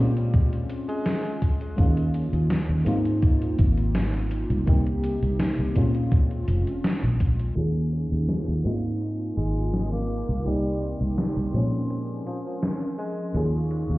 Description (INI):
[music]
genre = vaporwave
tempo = 83 BPM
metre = 4/4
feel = straight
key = Bb dorian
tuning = A4 = 445 Hz
[part]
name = FM electric piano with soft pad layer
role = accompaniment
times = 0.0-14.0 s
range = F3 to Ab4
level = -29 LUFS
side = equal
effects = analog chorus, analog delay
[part]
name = fingered electric bass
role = bass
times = 0.0-14.0 s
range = F1 to Bb2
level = -24 LUFS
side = equal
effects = tube saturation
[part]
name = gated 80s digital drum machine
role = drums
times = 0.2-13.9 s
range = cabasa, hi-hat, snare drum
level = -29 LUFS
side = equal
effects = gated reverb, gated reverb snare, studio reverb
[part]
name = electronic kick drum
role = drums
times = 0.3-7.4 s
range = none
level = -21 LUFS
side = equal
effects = studio reverb
[part]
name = breathy tenor saxophone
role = melody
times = 0.9-1.4, 9.4-13.4 s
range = F3 to Bb3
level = -35 LUFS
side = equal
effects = tape echo
[part]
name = warbly tape-like pad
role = sustained chords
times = 7.9-14.0 s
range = Eb4 to Db6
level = -39 LUFS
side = right 2 dB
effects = chorus, built-in reverb
[sound]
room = little or no reverb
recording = heard muffled through a wall, cassette tape, stone room reverb, EQ, low-pass filter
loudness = -22 LUFS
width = side -19 dB against mid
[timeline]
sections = 0.0-7.6 A section; 7.6-14.0 B section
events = filter sweep on ambient pad 7.6-14.0; filter sweep 7.6-14.0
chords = 0.0 Bbm9; 1.8 Eb9sus4; 2.9 Ab69; 4.7 Cm7; 5.8 Bbm9; 7.6 Eb9sus4; 8.6 Ab69; 10.5 Cm7; 11.5 Bbm9; 13.3 Eb9sus4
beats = 0.34 1.06 | 1.78 2.50 3.23 3.95 | 4.67 5.40 6.12 6.84 | 7.56 8.29 9.01 9.73 | 10.46 11.18 11.90 12.62 | 13.35